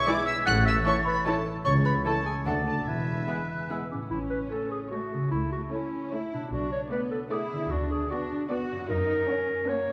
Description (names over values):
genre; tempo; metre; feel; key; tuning
cinematic, playful, whimsical film cue; 151 BPM; 3/4; straight; A major; A4 = 441 Hz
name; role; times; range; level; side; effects
muted studio violin section; melody; 0.0-9.9 s; E5 to F#6; -37 LUFS; equal; none
worn celesta; melody; 0.0-3.7 s; E5 to F#6; -35 LUFS; equal; none
clear oboe; second line; 0.0-3.9 s; B4 to E5; -39 LUFS; equal; none
dark clarinet; second line; 0.0-9.9 s; C#4 to F#5; -34 LUFS; equal; none
hollow concert flute; second line; 0.0-4.0 s; D6 to A6; -36 LUFS; equal; none
concert harp; arpeggios; 0.0-9.9 s; Gb2 to C#6; -36 LUFS; equal; none
muted studio violin section; second line; 0.1-9.9 s; E4 to D5; -42 LUFS; equal; none
muted studio viola section; accompaniment; 0.1-9.9 s; E3 to E4; -38 LUFS; equal; none
warm French horn section; sustained chords; 0.1-3.8 s; G#3 to E4; -41 LUFS; equal; none
mellow tuba; bass; 0.5-3.2 s; E1 to D2; -37 LUFS; equal; none
muted studio cello section; bass; 0.5-9.9 s; C#2 to F#4; -37 LUFS; equal; none
muted studio double bass section; bass; 0.5-9.2 s; E1 to Gb2; -37 LUFS; equal; none
room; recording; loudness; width
wet scoring stage reverb, RT60 2.0 s; none; -28 LUFS; mono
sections
0.0-4.1 A section; 4.1-9.9 B section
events
none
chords
0.5 A; 1.7 A/C#; 2.5 D; 2.9 E; 4.1 A; 5.3 A/C#; 6.5 Bm7; 7.7 Bm/D; 8.9 Gb